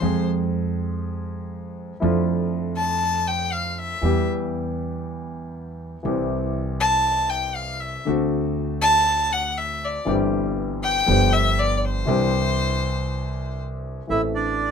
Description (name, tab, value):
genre	tango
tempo	120 BPM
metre	4/4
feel	rubato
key	C major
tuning	A4 = 439 Hz
part	clear violin	second line	0.0-13.6 s	C5 to A5	-22 LUFS	left 2 dB	none
part	warm concert grand piano	accompaniment	0.0-14.7 s	G1 to A4	-25 LUFS	left 1 dB	none
part	upright bass	bass	0.0-14.7 s	G1 to F2	-28 LUFS	right 2 dB	none
part	bandoneon	melody	14.1-14.7 s	D4 to E5	-23 LUFS	right 4 dB	none
room	moderate club reverb, RT60 0.7 s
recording	minimal, uncompressed stereo recording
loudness	-20 LUFS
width	side -6 dB against mid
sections	0.0-14.1 A section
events	violin solo 0.0-14.1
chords	0.0 Fm; 2.0 Dmadd9/F; 4.0 Em; 6.1 C; 8.1 D7; 10.1 C/G; 11.1 G7; 12.1 Cadd9; 14.1 Am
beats	| 0.02 0.52 1.02 1.52 | 2.02 2.52 3.02 3.52 | 4.03 4.53 5.04 5.54 | 6.05 6.56 7.06 7.57 | 8.07 8.57 9.07 9.57 | 10.07 10.57 11.07 11.57 | 12.07 12.57 13.08 13.59 | 14.09 14.60